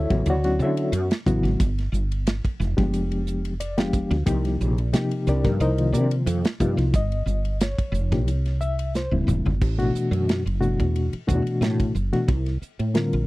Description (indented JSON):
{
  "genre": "electric jazz fusion",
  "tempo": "90 BPM",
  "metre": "4/4",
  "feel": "swing 53% on 16ths",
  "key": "A dorian from 9.6 s",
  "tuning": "A4 = 440 Hz",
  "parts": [
    { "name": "reed electric piano", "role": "accompaniment", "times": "0.0-13.3 s", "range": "B2 to F#5", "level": "-24 LUFS", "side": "left 2 dB", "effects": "fast tremolo" },
    { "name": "woody fretless electric bass", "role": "bass", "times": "0.0-13.3 s", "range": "Db1 to D3", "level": "-24 LUFS", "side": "equal", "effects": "ensemble chorus" },
    { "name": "modern studio drum kit", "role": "drums", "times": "0.1-13.3 s", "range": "crash cymbal, hi-hat, kick drum, ride cymbal, snare drum, toms", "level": "-25 LUFS", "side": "right 1 dB", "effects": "none" }
  ],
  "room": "little or no reverb",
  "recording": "dry, close 1970s-style studio recording",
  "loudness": "-21 LUFS",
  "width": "side -19 dB against mid",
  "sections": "0.0-9.6 A section; 9.6-13.3 B section",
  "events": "reed electric piano fill 3.3-4.3; drum fill 8.9-9.6",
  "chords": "0.0 Dmaj9; 1.6 G7b9; 4.3 Cm11; 6.9 Gm7b5; 8.3 C7b9; 9.6 Asus2; 12.3 C9sus4",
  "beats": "0.26 0.93 | 1.60 2.27 2.94 3.60 | 4.27 4.94 5.61 6.28 | 6.94 7.61 8.28 8.95 | 9.61 10.28 10.95 11.62 | 12.28 12.95"
}